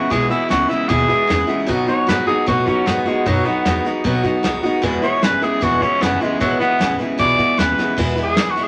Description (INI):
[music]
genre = rockabilly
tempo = 153 BPM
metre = 4/4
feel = straight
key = E major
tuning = A4 = 441 Hz
[part]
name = raspy tenor saxophone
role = melody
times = 0.0-8.7 s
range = F#3 to D5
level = -20 LUFS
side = equal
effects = none
[part]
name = picked steel-string acoustic guitar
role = accompaniment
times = 0.0-8.7 s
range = E2 to F#4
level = -22 LUFS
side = equal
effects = none
[part]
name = electric guitar through a small old amp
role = riff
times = 0.0-8.0 s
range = E2 to G#3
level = -26 LUFS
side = equal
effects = none
[part]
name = upright bass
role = bass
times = 0.1-8.6 s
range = E1 to B2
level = -30 LUFS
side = equal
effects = none
[part]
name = vintage brush drum kit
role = drums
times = 0.1-8.7 s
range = crash cymbal, hi-hat, kick drum, ride cymbal, snare drum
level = -26 LUFS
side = equal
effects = none
[sound]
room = moderate studio reverb, RT60 0.6 s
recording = none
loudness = -18 LUFS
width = mono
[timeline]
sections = 0.0-8.0 A section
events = drum fill 7.8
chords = 0.0 E; 1.7 B; 4.8 E